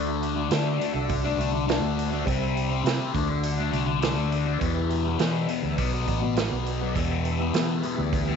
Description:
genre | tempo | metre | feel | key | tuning
psychedelic rock | 102 BPM | 4/4 | straight | E minor | A4 = 440 Hz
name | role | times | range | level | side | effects
tonewheel organ | sustained chords | 0.0-8.4 s | B3 to E5 | -34 LUFS | right 11 dB | slow rotary speaker, chorus vibrato
thick fuzz guitar | riff | 0.0-8.4 s | E2 to D4 | -27 LUFS | left 11 dB | distortion, phaser
fingered electric bass | bass | 0.0-8.4 s | A1 to E3 | -28 LUFS | right 2 dB | none
vintage drum kit | drums | 0.2-8.3 s | hi-hat, kick drum, snare drum | -30 LUFS | right 6 dB | none
room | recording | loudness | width
light reverb, small room ambience | 1960s-style stereo with parts hard left and right, nothing above 7.8 kHz | -23 LUFS | side -6 dB against mid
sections
0.0-8.4 A section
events
none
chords
0.0 Dadd9; 2.3 C; 3.1 Dadd9; 4.6 Em; 5.8 Bm; 7.0 Em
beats
0.51 1.09 1.68 | 2.27 2.85 3.44 4.02 | 4.61 5.19 5.78 6.37 | 6.95 7.54 8.12

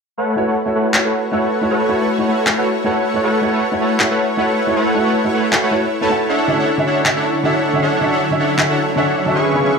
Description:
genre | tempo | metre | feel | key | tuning
future bass | 157 BPM | 4/4 | swing 56% on 16ths, half-time | A major | A4 = 440 Hz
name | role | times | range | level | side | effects
shimmering ambient pad | sustained chords | 0.7-9.8 s | D3 to C#5 | -22 LUFS | left 2 dB | chorus, built-in reverb
soft supersaw | riff | 0.2-9.7 s | A3 to C#6 | -17 LUFS | equal | low-pass filter, diffuse ambient delay
warm baby grand piano | accompaniment | 0.4-9.7 s | C#3 to F#5 | -20 LUFS | right 2 dB | analog chorus, diffuse ambient delay
electronic finger snaps and handclaps | drums | 0.9-8.7 s | none | -17 LUFS | left 1 dB | none
room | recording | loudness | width
wet plate reverb, RT60 1.0 s, digital ambience | dreamy mix soaked in reverb | -14 LUFS | side -5 dB against mid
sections
0.2-9.8 A section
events
filter sweep on supersaw synth 0.2-9.8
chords
0.2 A6; 6.3 Dmaj9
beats
| 0.18 0.56 0.94 1.32 | 1.71 2.09 2.47 2.85 | 3.23 3.62 4.00 4.38 | 4.76 5.14 5.53 5.91 | 6.29 6.67 7.06 7.44 | 7.82 8.20 8.59 8.97 | 9.35 9.73

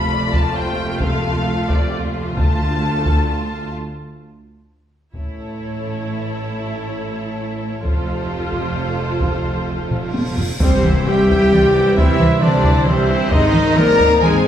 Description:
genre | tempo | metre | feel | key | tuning
cinematic, epic orchestral film score | 132 BPM | 3/4 | straight | unclear | A4 = 440 Hz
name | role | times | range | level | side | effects
rich symphonic violin section | melody | 0.0-14.5 s | C5 to B5 | -27 LUFS | left 3 dB | none
warm symphonic violin section | second line | 0.0-14.5 s | F4 to Bb5 | -28 LUFS | left 3 dB | none
rich symphonic viola section | accompaniment | 0.0-14.4 s | Eb3 to F4 | -25 LUFS | right 2 dB | none
warm French horn section | sustained chords | 0.0-14.5 s | A3 to Bb4 | -22 LUFS | left 3 dB | none
clear chamber double bass section | bass | 0.0-14.5 s | F1 to D2 | -25 LUFS | right 2 dB | none
rich symphonic cello section | bass | 0.0-14.5 s | D2 to Bb3 | -24 LUFS | right 2 dB | none
taiko ensemble | drums | 0.3-14.4 s | none | -19 LUFS | equal | none
cymbal swell and impact | sound effects | 10.1-12.0 s | none | -30 LUFS | equal | none
concert flute | second line | 10.6-14.5 s | C5 to E5 | -27 LUFS | left 1 dB | none
clear trombone section | sustained chords | 10.6-14.5 s | Eb3 to C4 | -27 LUFS | right 3 dB | none
bright trumpet | stabs | 10.6-14.5 s | C4 to Bb4 | -24 LUFS | right 2 dB | none
room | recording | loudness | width
wet recital hall reverb, RT60 1.4 s | heard from further back in the room | -15 LUFS | side -10 dB against mid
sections
0.0-5.1 A section; 5.1-10.6 B section; 10.6-14.5 C section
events
break 3.8-5.1; drum fill 9.9-10.6; cymbal swell 10.1-10.6; impact 10.6-12.0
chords
0.0 F; 2.4 Dm; 5.1 A; 7.8 F; 10.6 C; 13.3 Ab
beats
0.12 0.57 | 1.02 1.47 1.93 | 2.38 2.83 3.29 | 3.75 4.22 4.68 | 5.14 5.59 6.05 | 6.50 6.95 7.40 | 7.85 8.30 8.75 | 9.21 9.68 10.15 | 10.61 11.07 11.53 | 11.98 12.43 12.87 | 13.32 13.77 14.23

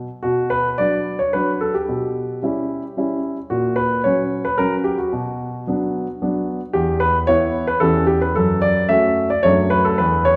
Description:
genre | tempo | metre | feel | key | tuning
classical-period piano sonatina | 111 BPM | 3/4 | rubato | B minor | A4 = 440 Hz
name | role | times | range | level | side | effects
warm baby grand piano | solo | 0.0-10.4 s | E2 to E5 | -19 LUFS | equal | none
room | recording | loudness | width
wet recital hall reverb, RT60 1.6 s | heard from further back in the room | -19 LUFS | mono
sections
0.2-10.4 A section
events
none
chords
0.2 Bm; 1.9 C#m7b5/B; 3.5 F#/A#; 5.1 Bm; 6.7 E5; 7.8 C#dim/E; 8.3 F#m; 9.4 D/F#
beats
| 0.23 0.79 1.34 | 1.88 2.42 2.96 | 3.50 4.04 4.58 | 5.12 5.66 6.20 | 6.73 7.27 7.80 | 8.34 8.89 9.43 | 9.98

